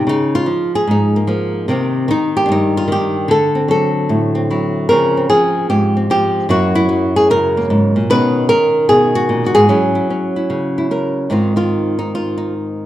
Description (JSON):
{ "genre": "solo jazz", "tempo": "150 BPM", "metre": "4/4", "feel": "swing 64% on 8ths", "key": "unclear", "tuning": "A4 = 440 Hz", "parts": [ { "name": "flamenco guitar", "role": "solo", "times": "0.0-12.9 s", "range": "Gb2 to B4", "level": "-13 LUFS", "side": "equal", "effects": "none" } ], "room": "wet large studio reverb, RT60 1.3 s", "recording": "dark, warm production", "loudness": "-13 LUFS", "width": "side -13 dB against mid", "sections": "0.0-11.3 A section; 11.3-12.9 B section", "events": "nylon-string guitar solo 11.3-12.9", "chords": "0.1 Db69; 1.7 Cm7; 3.3 D9; 4.9 Dbmaj7; 6.5 Gb7; 8.1 Bmaj9; 9.7 Gb9; 11.3 Ab6" }